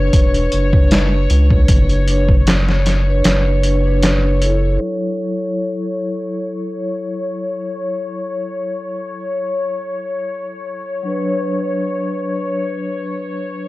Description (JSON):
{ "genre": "trip hop", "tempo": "77 BPM", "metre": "4/4", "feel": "swing 53% on 16ths", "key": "unclear", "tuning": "A4 = 440 Hz", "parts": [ { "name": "vibraphone with soft mallets", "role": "accompaniment", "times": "0.0-13.7 s", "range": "F#3 to C#5", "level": "-22 LUFS", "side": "equal", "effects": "harmonic tremolo, tape echo" }, { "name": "warm studio string section", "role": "sustained chords", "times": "0.0-13.7 s", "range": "C#5", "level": "-25 LUFS", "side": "left 3 dB", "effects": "vintage 12-bit sampler grit" }, { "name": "round analog bass", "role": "bass", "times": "0.0-4.8 s", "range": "E1 to C#2", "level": "-15 LUFS", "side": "equal", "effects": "none" }, { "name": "trip hop sampler-style drum kit", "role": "drums", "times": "0.1-4.6 s", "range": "hi-hat, kick drum, snare drum", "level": "-14 LUFS", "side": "equal", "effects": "none" } ], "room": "digital ambience", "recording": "dry, gritty hardware recording, vinyl crackle, low-pass filter", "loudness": "-15 LUFS", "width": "side -19 dB against mid", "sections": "0.0-4.8 A section; 4.8-13.7 B section", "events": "filter sweep 4.8-13.7", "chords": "0.0 Bmadd9; 4.8 F#m7; 11.0 Bmadd9/F#" }